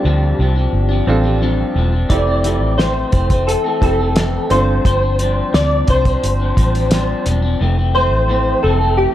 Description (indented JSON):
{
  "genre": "indie pop, bedroom pop",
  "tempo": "87 BPM",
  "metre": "4/4",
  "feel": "straight",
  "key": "unclear",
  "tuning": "A4 = 435 Hz",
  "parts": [
    { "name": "soft electric-piano-like synth keys", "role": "melody", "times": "0.0-9.1 s", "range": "G4 to D5", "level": "-19 LUFS", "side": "equal", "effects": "ensemble chorus, plate reverb, tape echo" },
    { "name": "electric guitar through a small old amp", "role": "accompaniment", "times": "0.0-9.1 s", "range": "F2 to D4", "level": "-21 LUFS", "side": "left 4 dB", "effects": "wide subtle chorus, vibrato effect, plate reverb" },
    { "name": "warm upright piano", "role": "accompaniment", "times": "0.0-4.9 s", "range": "C4 to A4", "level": "-23 LUFS", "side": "right 4 dB", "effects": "cassette tape, plate reverb" },
    { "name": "vintage muted fingered electric bass", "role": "bass", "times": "0.0-9.1 s", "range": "E1 to D2", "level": "-17 LUFS", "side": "equal", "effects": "none" },
    { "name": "cloth-damped thuddy drum kit", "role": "drums", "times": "2.1-7.4 s", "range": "hi-hat, kick drum, snare drum", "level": "-16 LUFS", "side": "equal", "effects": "none" }
  ],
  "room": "light reverb",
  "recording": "none",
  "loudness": "-13 LUFS",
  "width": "side -12 dB against mid",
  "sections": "0.0-9.1 A section",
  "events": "none",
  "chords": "0.0 G7sus4; 2.1 Fmaj7; 4.5 G7sus4; 7.6 Fmaj7"
}